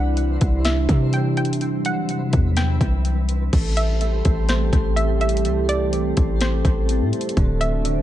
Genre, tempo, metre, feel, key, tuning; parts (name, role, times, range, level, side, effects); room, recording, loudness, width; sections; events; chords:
hip hop, atmospheric cloud-rap; 125 BPM; 4/4; half-time; A dorian; A4 = 439 Hz
hollow square pluck; melody; 0.0-7.8 s; C5 to G5; -28 LUFS; right 1 dB; chorus, low-pass filter, analog delay
dark analog pad; sustained chords; 0.0-8.0 s; C3 to A4; -25 LUFS; right 1 dB; chorus, phaser, sidechain pumping
warm 808-style bass; bass; 0.0-8.0 s; D1 to C3; -21 LUFS; equal
twinkling granular texture; texture; 0.0-8.0 s; A3 to D5; -36 LUFS; right 1 dB; built-in reverb
trap drum kit; drums; 0.2-8.0 s; crash cymbal, hi-hat, kick drum, snare drum; -23 LUFS; equal
concert harp; arpeggios; 3.5-8.0 s; D3 to C4; -29 LUFS; left 2 dB; low-pass filter, analog delay
little or no reverb; echo-heavy mix, nothing above 10.6 kHz; -18 LUFS; side -12 dB against mid
0.0-3.5 A section; 3.5-8.0 B section
0.0 Cmaj7; 3.5 Am7; 7.4 D7